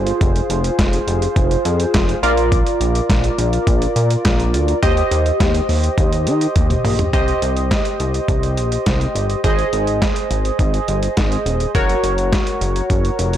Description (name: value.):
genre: synth-pop.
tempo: 104 BPM.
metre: 4/4.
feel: straight.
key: unclear.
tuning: A4 = 440 Hz.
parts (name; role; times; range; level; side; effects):
funky polysynth comp; accompaniment; 0.0-13.4 s; F4 to Eb5; -20 LUFS; right 1 dB; chorus.
chorused synth bass; bass; 0.0-13.4 s; Eb1 to Eb3; -19 LUFS; equal; none.
dusty soul sampler-style drum kit; drums; 0.1-13.4 s; hi-hat, kick drum, snare drum, toms; -19 LUFS; equal; overdrive.
room: light reverb, digital ambience.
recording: blown-out, overdriven recording, overdrive.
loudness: -15 LUFS.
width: side -11 dB against mid.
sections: 0.0-7.1 A section; 7.1-13.4 B section.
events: drum fill 6.6-7.1.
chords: 0.0 Fm; 2.2 Bb; 4.8 Eb6; 7.1 Cm; 9.4 Ab; 11.7 Gb.